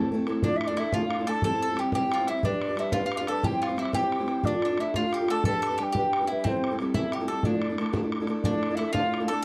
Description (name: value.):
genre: celtic folk, Celtic jig.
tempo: 120 BPM (dotted quarters).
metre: 6/8.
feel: straight.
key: D dorian.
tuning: A4 = 441 Hz.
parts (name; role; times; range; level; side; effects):
baroque flute; melody; 0.0-9.4 s; C5 to A5; -33 LUFS; equal; none.
mandolin; second line; 0.0-9.4 s; C4 to A4; -35 LUFS; equal; none.
fingerpicked steel-string acoustic guitar; accompaniment; 0.0-9.4 s; A2 to C5; -31 LUFS; equal; none.
bodhran; percussion; 0.0-9.4 s; none; -34 LUFS; equal; none.
room: light reverb.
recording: dry, close 1970s-style studio recording.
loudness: -27 LUFS.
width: mono.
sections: 0.4-8.4 A section; 8.4-9.4 A section.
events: none.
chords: 0.4 Dmadd9; 1.4 C; 2.4 G; 3.4 C; 4.4 Dm; 5.4 G; 6.4 C6; 7.4 Dmadd9.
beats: | 0.43 0.93 | 1.44 1.94 | 2.44 2.94 | 3.44 3.94 | 4.44 4.94 | 5.44 5.94 | 6.44 6.94 | 7.44 7.94 | 8.44 8.94 | 9.44.